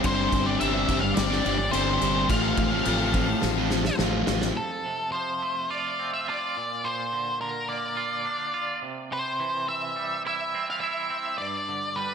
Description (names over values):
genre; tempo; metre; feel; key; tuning
quiet-loud alternative rock; 105 BPM; 4/4; straight; unclear; A4 = 441 Hz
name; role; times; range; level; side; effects
clear studio string section; sustained chords; 0.0-4.5 s; C4 to A5; -37 LUFS; equal; none
crunchy overdriven guitar; riff; 0.0-4.5 s; G2 to F4; -28 LUFS; left 11 dB; slapback echo
sludgy distorted guitar; riff; 0.0-4.6 s; G2 to F4; -29 LUFS; right 10 dB; overdrive, slapback echo
fingered electric bass; bass; 0.0-4.5 s; G1 to A1; -30 LUFS; right 1 dB; none
loose indie drum kit; drums; 0.0-4.5 s; crash cymbal, kick drum, snare drum; -28 LUFS; equal; none
octave-fuzz lead guitar; melody; 0.1-12.1 s; A4 to F5; -28 LUFS; left 1 dB; distortion, slapback echo
twangy electric guitar; arpeggios; 4.6-12.1 s; F2 to F4; -32 LUFS; right 6 dB; tremolo, slapback echo
room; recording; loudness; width
moderate lush hall reverb, RT60 1.8 s, studio reverb; big arena sound; -24 LUFS; side -7 dB against mid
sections
0.0-4.6 A section; 4.6-12.1 B section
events
drum fill 3.4-4.6; half time 4.6-12.1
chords
0.0 Gsus4; 2.3 F/A; 4.6 F; 6.5 Bb; 8.8 C; 11.4 G